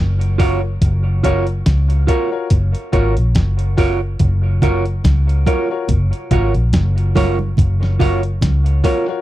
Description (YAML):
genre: dub reggae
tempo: 71 BPM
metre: 4/4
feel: swing 56% on 16ths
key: F# major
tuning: A4 = 441 Hz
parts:
  - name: vintage muted fingered electric bass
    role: bass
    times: 0.0-8.8 s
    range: F#1 to C#2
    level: -16 LUFS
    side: equal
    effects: tube saturation
  - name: dusty soul sampler-style drum kit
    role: drums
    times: 0.2-9.1 s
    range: hi-hat, kick drum, snare drum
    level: -17 LUFS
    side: equal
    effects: none
  - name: semi-hollow electric guitar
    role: accompaniment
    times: 0.4-9.1 s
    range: E#4 to C#5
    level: -23 LUFS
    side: right 9 dB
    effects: dub echo
  - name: clear concert grand piano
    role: stabs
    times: 0.4-9.2 s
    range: E#4 to C#5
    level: -24 LUFS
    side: left 7 dB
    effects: dub echo
  - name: congas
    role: percussion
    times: 4.2-9.1 s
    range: none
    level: -24 LUFS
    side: right 5 dB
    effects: none
room: little or no reverb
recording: dry, close 1970s-style studio recording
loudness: -14 LUFS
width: side -14 dB against mid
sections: 0.0-9.2 A section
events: break 0.0-4.2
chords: 0.0 F#maj7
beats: | 0.81 1.66 2.50 3.35 | 4.20 5.04 5.89 6.73 | 7.58 8.42